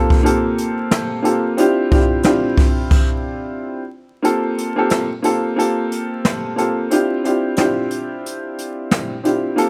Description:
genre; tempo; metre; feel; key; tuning
hip hop, boom-bap hip-hop; 90 BPM; 4/4; swing 60% on 16ths; G minor; A4 = 441 Hz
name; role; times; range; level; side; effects
warm upright piano; accompaniment; 0.0-9.7 s; Bb3 to A4; -20 LUFS; equal; high-pass filter, low-pass filter
jazz brush drum kit; drums; 0.1-9.7 s; crash cymbal, hi-hat, kick drum, rim click, snare drum; -20 LUFS; equal; none
room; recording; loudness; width
small room ambience; vinyl crackle; -18 LUFS; mono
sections
0.0-4.2 A section; 4.2-9.7 B section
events
stop 2.9-4.2; break 4.2-9.7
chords
0.0 Gm11; 1.6 Dm11; 4.2 Gm11; 6.9 Dm11

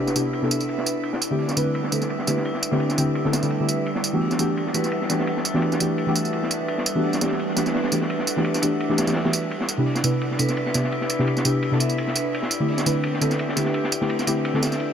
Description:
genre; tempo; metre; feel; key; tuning
liquid drum and bass; 170 BPM; 4/4; swing 53% on 16ths; E minor; A4 = 439 Hz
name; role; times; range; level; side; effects
deep mellow chord stab; accompaniment; 0.0-14.9 s; C3 to B4; -24 LUFS; left 1 dB; chorus, tape echo
glassy FM pad; sustained chords; 0.0-14.9 s; G3 to F#5; -30 LUFS; equal; ensemble chorus, built-in reverb
vibraphone with medium hard mallets; arpeggios; 0.0-14.9 s; D4 to E5; -28 LUFS; right 2 dB; low-pass filter, digital delay
crunchy breakbeat drum kit; drums; 0.1-14.9 s; hi-hat, ride cymbal, snare drum; -30 LUFS; equal; high-pass filter on cymbals, low-pass filter on cymbals, high-pass filter on hats, low-pass filter on hats, high-pass filter on snare, low-pass filter on snare, high-pass filter on room, low-pass filter on room
tambourine; drums; 0.1-14.8 s; none; -26 LUFS; right 2 dB; none
room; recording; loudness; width
light reverb, small room ambience; none; -20 LUFS; side -8 dB against mid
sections
0.0-14.9 A section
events
none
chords
0.0 Cmaj9; 1.0 D9sus4; 3.9 Em11; 9.5 Cmaj9; 12.3 D9sus4

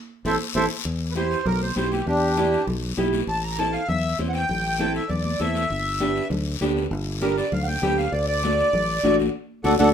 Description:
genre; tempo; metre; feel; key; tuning
latin, cumbia; 198 BPM; 4/4; straight; unclear; A4 = 439 Hz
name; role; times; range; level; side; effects
fingered electric bass; bass; 0.2-9.9 s; G1 to E2; -27 LUFS; left 1 dB; none
accordion; melody; 0.3-9.9 s; D4 to Bb5; -23 LUFS; right 1 dB; light tremolo tuning
nylon-string guitar; accompaniment; 0.3-9.9 s; A3 to C5; -24 LUFS; equal; none
congas; percussion; 0.3-9.9 s; none; -31 LUFS; right 1 dB; none
guiro; percussion; 0.3-9.9 s; none; -35 LUFS; left 7 dB; none
room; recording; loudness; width
wet studio reverb, RT60 0.6 s; minimal, uncompressed stereo recording; -21 LUFS; side -8 dB against mid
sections
0.9-9.9 A section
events
drum fill 0.0-0.9; band accent 0.0-0.9, 9.3-9.9; accordion solo 0.9-9.9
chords
0.0 Am; 0.9 Em; 3.3 Am; 5.7 G; 8.1 D

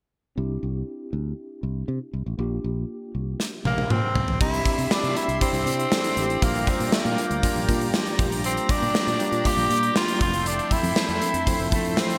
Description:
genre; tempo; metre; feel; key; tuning
1980s-style pop; 119 BPM; 4/4; straight; C mixolydian; A4 = 441 Hz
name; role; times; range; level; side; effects
mellow tine electric piano; accompaniment; 0.4-12.2 s; F3 to A4; -32 LUFS; equal; none
fingered electric bass; bass; 0.4-11.9 s; F1 to C3; -31 LUFS; equal; none
gated 80s drum kit; drums; 3.4-12.2 s; crash cymbal, hi-hat, kick drum, snare drum, toms; -27 LUFS; equal; gated reverb
raspy tenor saxophone; melody; 3.7-12.2 s; A3 to G4; -28 LUFS; equal; delay
lush unison pad; sustained chords; 4.4-12.2 s; G4 to C6; -35 LUFS; equal; chorus
room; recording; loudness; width
moderate lush hall reverb, RT60 2.0 s; bright 1980s-style digital production; -24 LUFS; mono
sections
0.4-4.4 A section; 4.4-12.2 B section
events
drum fill 3.4-4.4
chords
0.4 Cadd9; 2.4 Gm7/Bb; 4.2 Bbsus2; 4.4 Cadd9; 6.4 Gm7/Bb; 10.2 Fmaj7

